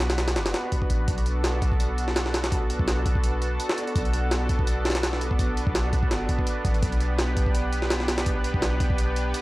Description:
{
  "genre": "drum and bass, jungle",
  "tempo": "167 BPM",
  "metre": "4/4",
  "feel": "swing 54% on 16ths",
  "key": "B minor",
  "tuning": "A4 = 440 Hz",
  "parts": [
    { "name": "lush unison pad", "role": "sustained chords", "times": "0.0-9.4 s", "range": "B3 to B4", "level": "-29 LUFS", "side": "right 1 dB", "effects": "chorus" },
    { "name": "warm 808-style bass", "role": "bass", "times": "0.0-9.3 s", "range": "F#1 to B1", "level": "-27 LUFS", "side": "equal", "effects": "tube saturation" },
    { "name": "jungle sampler-style drum kit", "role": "drums", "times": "0.0-9.4 s", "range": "hi-hat, kick drum, snare drum", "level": "-25 LUFS", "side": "equal", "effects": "none" }
  ],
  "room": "little or no reverb",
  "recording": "dry, gritty hardware recording, transformer saturation, vinyl crackle",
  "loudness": "-22 LUFS",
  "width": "side -19 dB against mid",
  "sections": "0.0-9.4 A section",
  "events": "none",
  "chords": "0.0 G/B (rootless); 6.8 G/B",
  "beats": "0.00 0.36 0.72 | 1.08 1.44 1.80 2.16 | 2.52 2.88 3.24 3.60 | 3.96 4.32 4.67 5.03 | 5.39 5.75 6.11 6.47 | 6.83 7.19 7.55 7.91 | 8.27 8.63 8.99 9.35"
}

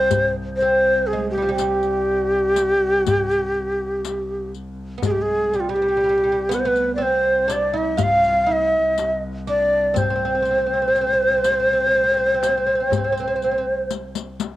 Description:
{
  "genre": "Arabic maqam ensemble",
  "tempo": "122 BPM (eighths)",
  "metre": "10/8",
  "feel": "straight",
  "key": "C maqam suznak",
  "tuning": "A4 = 440 Hz",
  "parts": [
    { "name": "breathy ney", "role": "melody", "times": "0.0-13.9 s", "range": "F4 to F5", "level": "-18 LUFS", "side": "equal", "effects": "cassette tape" },
    { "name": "oud", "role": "second line", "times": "0.0-13.6 s", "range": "F3 to F4", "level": "-26 LUFS", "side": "right 6 dB", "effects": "cassette tape" },
    { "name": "bright double bass", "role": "drone", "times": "0.0-14.6 s", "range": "C2", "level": "-32 LUFS", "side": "left 1 dB", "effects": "cassette tape" },
    { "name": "darbuka", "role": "percussion", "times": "0.1-14.6 s", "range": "none", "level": "-27 LUFS", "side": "left 3 dB", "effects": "none" },
    { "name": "riq", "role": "percussion", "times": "0.1-14.6 s", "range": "none", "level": "-29 LUFS", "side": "left 10 dB", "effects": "none" }
  ],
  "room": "moderate spring reverb, RT60 1.7 s, small room ambience",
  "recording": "home recording on cassette",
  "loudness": "-17 LUFS",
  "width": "side -15 dB against mid",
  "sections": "0.0-14.6 A section",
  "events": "drum fill 13.9-14.6",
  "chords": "none",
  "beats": "| 0.10 0.60 1.09 1.58 2.08 2.57 3.06 3.56 4.05 4.54 | 5.04 5.53 6.02 6.51 7.01 7.50 7.99 8.48 8.98 9.47 | 9.96 10.45 10.95 11.44 11.93 12.42 12.91 13.40 13.90 14.39"
}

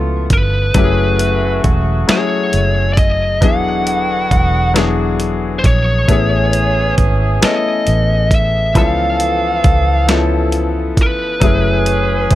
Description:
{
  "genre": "slow six-eight R&B",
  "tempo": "45 BPM (dotted quarters)",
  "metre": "6/8",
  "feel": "straight",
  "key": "unclear",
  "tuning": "A4 = 438 Hz",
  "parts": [
    { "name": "warm grand piano", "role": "accompaniment", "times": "0.0-12.3 s", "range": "E3 to A4", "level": "-19 LUFS", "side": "left 5 dB", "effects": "none" },
    { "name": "warm horn section", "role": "stabs", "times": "0.0-12.3 s", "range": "B2 to A4", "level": "-23 LUFS", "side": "right 3 dB", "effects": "ping-pong delay" },
    { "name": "vintage muted fingered electric bass", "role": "bass", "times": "0.0-12.3 s", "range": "E1 to C#2", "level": "-17 LUFS", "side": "right 1 dB", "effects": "none" },
    { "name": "biting lead guitar", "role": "melody", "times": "0.3-12.3 s", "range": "B4 to F#5", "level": "-18 LUFS", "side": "equal", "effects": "overdrive" },
    { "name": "dusty soul sampler-style drum kit", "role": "drums", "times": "0.3-12.3 s", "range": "hi-hat, kick drum, snare drum", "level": "-14 LUFS", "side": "right 1 dB", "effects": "none" }
  ],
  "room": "little or no reverb",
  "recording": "none",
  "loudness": "-12 LUFS",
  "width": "side -14 dB against mid",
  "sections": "0.0-12.3 A section",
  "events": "none",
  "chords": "0.0 C#7alt; 0.7 F#m9; 3.4 E9; 6.1 Amaj9; 8.7 C#7alt; 11.4 F#m9",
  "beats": "| 0.75 2.08 | 3.41 4.75 | 6.08 7.41 | 8.75 10.08 | 11.41"
}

